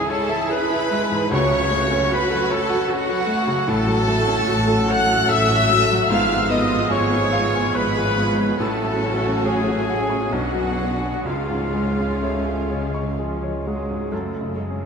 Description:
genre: classical, romantic movement for piano and orchestra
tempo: 61-78 BPM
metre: 3/4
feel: rubato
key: F# minor from 3.7 s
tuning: A4 = 440 Hz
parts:
  - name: clear baby grand piano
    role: melody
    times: 0.0-14.9 s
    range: B1 to C#6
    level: -25 LUFS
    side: left 1 dB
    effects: none
  - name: warm studio violin section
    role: melody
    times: 0.0-14.6 s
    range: C#5 to F#6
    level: -31 LUFS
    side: equal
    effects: none
  - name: dark clarinet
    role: second line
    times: 0.0-14.9 s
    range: E#4 to F#5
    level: -30 LUFS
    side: right 3 dB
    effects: none
  - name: dark studio violin section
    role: second line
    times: 0.0-13.2 s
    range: E#4 to F#5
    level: -29 LUFS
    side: right 2 dB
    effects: none
  - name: hollow flute section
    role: second line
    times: 0.0-13.1 s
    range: E#5 to F#6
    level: -28 LUFS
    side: left 3 dB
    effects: none
  - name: warm oboe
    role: second line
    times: 0.0-13.2 s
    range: E#4 to F#5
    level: -31 LUFS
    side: left 3 dB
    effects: none
  - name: rich studio viola section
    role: accompaniment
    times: 0.0-14.6 s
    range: C#3 to A4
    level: -28 LUFS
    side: right 3 dB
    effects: none
  - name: clear trumpet section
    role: stabs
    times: 0.0-13.2 s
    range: E#4 to F#5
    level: -26 LUFS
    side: left 1 dB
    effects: none
  - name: dark French horn section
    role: sustained chords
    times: 1.3-14.4 s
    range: Cb4 to A4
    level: -31 LUFS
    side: left 1 dB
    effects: none
  - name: mellow trombone section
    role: sustained chords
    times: 1.3-13.8 s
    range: C#3 to B3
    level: -33 LUFS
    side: right 1 dB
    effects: none
  - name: dark studio double bass section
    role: bass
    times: 1.3-14.9 s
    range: F#1 to C#2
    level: -28 LUFS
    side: equal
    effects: none
  - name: warm studio cello section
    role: bass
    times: 1.3-14.9 s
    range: Ab2 to A3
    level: -28 LUFS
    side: equal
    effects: none
  - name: warm bassoon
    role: accompaniment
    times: 12.2-14.1 s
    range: F#3 to A3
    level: -33 LUFS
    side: left 4 dB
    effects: none
room: wet huge ambient reverb, RT60 8.6 s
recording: in a vast, echoing space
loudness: -18 LUFS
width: side -6 dB against mid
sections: 0.0-14.1 A section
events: none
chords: 0.0 C#m; 1.3 F#m/C#; 3.7 F#m/A; 6.1 Fdim/Ab; 8.6 F#m/A; 10.3 Bm; 11.3 C#; 14.1 F#m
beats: 0.50 | 1.31 2.11 2.91 | 3.69 4.49 5.29 | 6.09 6.91 7.75 | 8.59 9.45 10.32 | 11.26 12.23 13.18 | 14.12

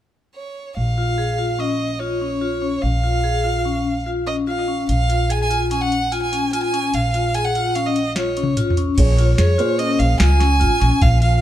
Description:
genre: progressive instrumental, band music in an uneven meter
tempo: 146 BPM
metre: 5/4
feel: straight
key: Bb minor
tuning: A4 = 442 Hz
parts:
  - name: clear violin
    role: melody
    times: 0.4-11.4 s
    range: Db5 to Ab5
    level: -22 LUFS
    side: right 3 dB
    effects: ping-pong delay
  - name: upright bass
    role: bass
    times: 0.8-11.4 s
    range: Ab1 to F2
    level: -20 LUFS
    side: equal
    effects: none
  - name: vibraphone with medium hard mallets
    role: arpeggios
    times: 1.0-11.3 s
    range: Db4 to Ab4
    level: -22 LUFS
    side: left 4 dB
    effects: none
  - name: soft vintage rhythm box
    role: drums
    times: 4.9-11.3 s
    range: crash cymbal, hi-hat, kick drum, snare drum, toms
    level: -22 LUFS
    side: equal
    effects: none
  - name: dark grand piano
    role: accompaniment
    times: 9.0-10.2 s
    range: Bb2 to Db5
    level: -24 LUFS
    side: right 2 dB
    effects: none
room: moderate studio reverb, RT60 0.6 s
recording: dark, warm production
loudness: -16 LUFS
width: side -12 dB against mid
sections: 0.8-9.0 A section; 9.0-11.4 B section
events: drum fill 8.2-9.0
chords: 0.0 N.C.; 0.8 Bbm; 9.0 Bbm7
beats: 0.36 | 0.77 1.19 1.60 2.01 2.42 | 2.83 3.25 3.66 4.07 4.48 | 4.89 5.30 5.71 6.12 6.53 | 6.94 7.35 7.75 8.16 8.57 | 8.98 9.39 9.79 10.20 10.61 | 11.02

